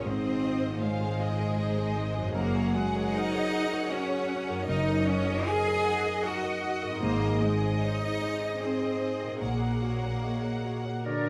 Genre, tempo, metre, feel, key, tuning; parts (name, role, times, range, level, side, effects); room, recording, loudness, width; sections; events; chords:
cinematic; 77 BPM; 3/4; uneven beats, rubato; A4 = 442 Hz
clear studio violin section; melody; 0.0-11.3 s; Bb4 to Gb5; -41 LUFS; equal
clear studio violin section; second line; 0.0-11.3 s; Ab4 to Ab5; -39 LUFS; equal
dark baby grand piano; accompaniment; 0.0-11.3 s; Gb2 to Eb5; -36 LUFS; equal
rich studio viola section; accompaniment; 0.0-11.3 s; Eb4 to Gb5; -40 LUFS; equal
concert harp; arpeggios; 0.0-11.3 s; Gb2 to Bb4; -41 LUFS; equal
bright studio cello section; bass; 0.0-11.3 s; D3 to Ab4; -34 LUFS; equal
rich studio double bass section; bass; 0.0-10.1 s; Gb1 to Bb1; -36 LUFS; equal
clear oboe; second line; 11.1-11.3 s; Bb4; -39 LUFS; equal
mellow clarinet; second line; 11.1-11.3 s; D5; -37 LUFS; equal
mellow hollow flute section; second line; 11.1-11.3 s; D5; -39 LUFS; equal
clear French horn section; sustained chords; 11.1-11.3 s; D4; -35 LUFS; equal
moderate scoring stage reverb, RT60 1.6 s; -29 LUFS; mono
0.0-11.3 A section
0.1 Ab; 2.4 Gbadd9; 7.0 Ab; 9.4 Gbadd9/Bb